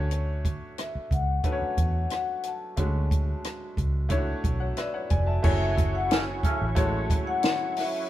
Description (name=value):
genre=lush 1970s-style soul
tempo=90 BPM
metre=4/4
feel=straight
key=unclear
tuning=A4 = 439 Hz
part: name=clear baby grand piano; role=accompaniment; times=0.0-8.1 s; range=G#3 to A5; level=-33 LUFS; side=equal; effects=none
part: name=vintage muted fingered electric bass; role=bass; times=0.0-7.2 s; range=F1 to E2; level=-28 LUFS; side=equal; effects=none
part: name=compact cocktail drum kit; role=drums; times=0.1-7.9 s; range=crash cymbal, hi-hat, kick drum, rim click, snare drum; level=-27 LUFS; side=right 1 dB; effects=none
part: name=vibraphone with medium mallets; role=melody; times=0.8-8.1 s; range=D5 to A5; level=-31 LUFS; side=left 4 dB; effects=none
part: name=overdriven tonewheel organ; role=sustained chords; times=5.4-8.1 s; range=F#3 to C#5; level=-35 LUFS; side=right 1 dB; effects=chorus vibrato, slow rotary speaker
part: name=bright trombone section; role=stabs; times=6.1-6.6 s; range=C#3 to C#4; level=-33 LUFS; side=right 2 dB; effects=none
room=moderate stone room reverb, RT60 1.3 s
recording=band playing live in one room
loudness=-24 LUFS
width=side -13 dB against mid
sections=0.0-5.4 A section; 5.4-8.1 B section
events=none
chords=0.0 Dmaj7; 5.4 F#m9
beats=| 0.12 0.78 1.45 2.11 | 2.78 3.45 4.11 4.78 | 5.44 6.11 6.77 7.44